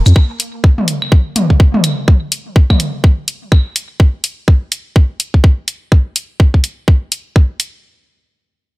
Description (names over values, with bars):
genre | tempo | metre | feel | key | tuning
minimal techno | 125 BPM | 4/4 | swing 60% on 16ths | none | none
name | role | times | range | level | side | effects
electronic shaker and hi-hat | drums | 0.1-7.7 s | none | -17 LUFS | left 1 dB | studio ambience
electronic claves and toms | percussion | 0.1-3.6 s | none | -18 LUFS | equal | studio ambience, analog delay
electronic kick drum | drums | 0.2-7.5 s | none | -8 LUFS | equal | studio ambience
room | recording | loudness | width
digital ambience | echo-heavy mix | -11 LUFS | side -21 dB against mid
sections
0.0-7.8 A section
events
none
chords
none